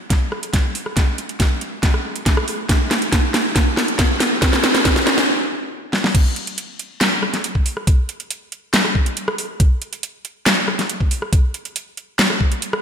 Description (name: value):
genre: dubstep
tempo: 139 BPM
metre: 4/4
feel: half-time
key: none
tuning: none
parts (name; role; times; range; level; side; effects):
- dubstep drum kit; drums; 0.1-12.8 s; crash cymbal, handclaps, hi-hat, rim click, snare drum; -18 LUFS; equal; none
- electronic kick drum; drums; 0.1-12.5 s; none; -16 LUFS; equal; none
room: wet lush hall reverb, RT60 1.6 s, digital ambience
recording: dreamy mix soaked in reverb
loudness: -16 LUFS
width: side -7 dB against mid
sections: 0.0-6.1 A section; 6.1-12.8 B section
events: build-up 0.0-6.1; drum fill 0.0-5.3, 5.9; stop 5.3-6.1; drop 6.1-12.8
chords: none